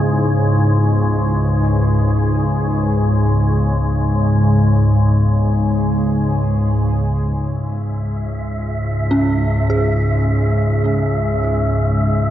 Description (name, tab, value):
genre	dark ambient drone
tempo	free time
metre	none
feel	none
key	C# minor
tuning	A4 = 440 Hz
part	deep dark ambient pad	sustained chords	0.0-12.3 s	C#3 to G#4	-31 LUFS	equal	chorus, built-in reverb
part	dark detuned synth bell	arpeggios	0.0-12.3 s	C#4 to G#4	-24 LUFS	right 2 dB	chorus, phaser, tape echo
part	organ-like drone	drone	0.0-12.3 s	C#2 to G#2	-15 LUFS	equal	ensemble chorus, built-in reverb
part	wind-like tuned noise texture	texture	8.0-12.3 s	E5	-25 LUFS	equal	built-in reverb
room	moderate huge ambient reverb, RT60 7.9 s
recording	in a vast, echoing space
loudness	-14 LUFS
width	side -12 dB against mid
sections	0.0-7.4 A section; 7.4-12.3 B section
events	fade-out on ambient pad 0.0-7.4; filter sweep on synth drone 7.4-12.3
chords	0.0 C#m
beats	free time